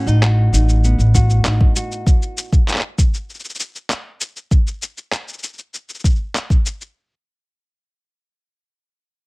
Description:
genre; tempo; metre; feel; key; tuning
folktronica; 98 BPM; 4/4; straight; unclear; A4 = 435 Hz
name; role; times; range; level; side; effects
nylon-string guitar; arpeggios; 0.0-2.6 s; A2 to F#4; -24 LUFS; equal; low-pass filter, digital delay
upright bass; bass; 0.1-1.6 s; A1; -13 LUFS; equal; none
electronic shaker and handclaps; drums; 0.1-6.9 s; none; -23 LUFS; left 1 dB; none
electronic kick drum; drums; 1.1-6.6 s; none; -14 LUFS; equal; none
room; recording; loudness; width
little or no reverb; none; -15 LUFS; side -26 dB against mid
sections
0.0-7.0 A section; 7.0-9.3 B section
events
none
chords
0.0 B7/A; 2.1 N.C.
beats
0.22 0.84 1.45 | 2.06 2.67 3.29 3.90 | 4.51 5.12 5.73 6.35

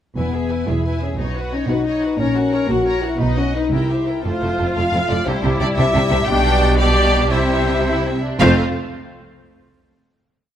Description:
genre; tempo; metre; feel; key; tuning
cinematic, heroic adventure film score; 109-120 BPM (dotted quarters); 6/8; straight; E lydian, F lydian from 4.3 s; A4 = 440 Hz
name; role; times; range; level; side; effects
rich symphonic violin section; melody; 0.2-8.6 s; C5 to A#5; -25 LUFS; left 3 dB; none
warm symphonic violin section; second line; 0.2-8.6 s; C4 to D#5; -27 LUFS; left 1 dB; none
clear symphonic viola section; accompaniment; 0.2-8.6 s; A3 to A#4; -25 LUFS; equal; none
mellow French horn section; sustained chords; 0.2-8.6 s; F3 to A4; -22 LUFS; left 4 dB; none
rich chamber double bass section; bass; 0.2-8.6 s; E1 to C2; -22 LUFS; right 2 dB; none
rich symphonic cello section; bass; 0.2-8.6 s; E2 to C3; -23 LUFS; right 2 dB; none
mellow trumpet section; stabs; 4.3-8.6 s; C5 to F5; -24 LUFS; right 1 dB; none
room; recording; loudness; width
moderate scoring stage reverb, RT60 1.7 s; none; -16 LUFS; side -10 dB against mid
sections
0.2-4.3 theme; 4.3-8.4 theme; 8.4-9.5 final chord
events
slowing down 5.8-8.4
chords
0.2 E; 1.2 Badd9; 2.2 F#/A#; 3.2 B; 3.7 C7; 4.3 F; 5.3 Cadd9; 6.3 G/B; 7.3 C; 8.4 F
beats
| 0.17 0.68 | 1.19 1.69 | 2.19 2.69 | 3.20 3.72 | 4.25 4.76 | 5.27 5.78 | 6.28 6.80 | 7.32 7.86 | 8.41

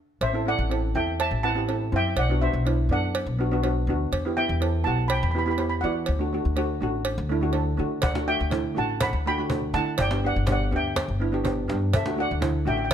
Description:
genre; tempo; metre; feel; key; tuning
calypso; 123 BPM; 4/4; straight; unclear; A4 = 440 Hz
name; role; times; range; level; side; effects
steel pan; melody; 0.2-12.9 s; A4 to B5; -28 LUFS; right 1 dB; slapback echo
upright bass; bass; 0.2-12.9 s; G1 to E3; -26 LUFS; left 1 dB; none
cowbell; percussion; 0.2-12.9 s; none; -32 LUFS; right 3 dB; none
steel pan; accompaniment; 0.3-12.9 s; A3 to C5; -28 LUFS; right 2 dB; none
cajon; drums; 8.0-12.9 s; none; -30 LUFS; left 1 dB; none
room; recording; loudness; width
little or no reverb; close, detailed microphones; -22 LUFS; side -9 dB against mid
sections
0.2-12.9 A section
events
stop 0.0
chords
0.2 Am; 2.2 Bm; 4.1 Em; 6.1 D; 10.0 G; 11.9 D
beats
| 0.21 0.70 1.19 1.68 | 2.17 2.66 3.15 3.64 | 4.13 4.62 5.10 5.59 | 6.08 6.57 7.06 7.54 | 8.03 8.52 9.01 9.50 | 9.98 10.47 10.96 11.45 | 11.94 12.42 12.91

